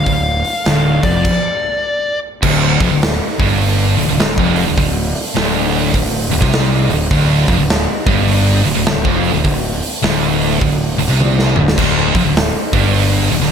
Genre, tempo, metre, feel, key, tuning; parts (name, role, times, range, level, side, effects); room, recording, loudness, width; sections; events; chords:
stoner and doom metal; 103 BPM; 4/4; swing 64% on 8ths; D minor; A4 = 441 Hz
fuzz lead guitar; melody; 0.0-2.2 s; D5 to F5; -18 LUFS; left 2 dB; distortion, slapback echo
thick fuzz guitar; riff; 0.0-13.5 s; D2 to C3; -19 LUFS; left 8 dB; distortion
thick fuzz guitar; riff; 0.0-13.5 s; D2 to C3; -19 LUFS; right 7 dB; distortion
fuzz fingered electric bass; bass; 0.0-13.5 s; D1 to C2; -20 LUFS; equal; overdrive
big rock drum kit; drums; 0.1-13.5 s; crash cymbal, hi-hat, kick drum, snare drum, splash cymbal, toms; -17 LUFS; equal
heavy high-gain guitar; riff; 2.4-13.5 s; D2 to C3; -20 LUFS; right 3 dB; distortion
studio reverb; -12 LUFS; side -7 dB against mid
0.0-2.4 A section; 2.4-13.5 B section
stop 1.3-2.4; drum fill 11.2-11.8
0.0 Dm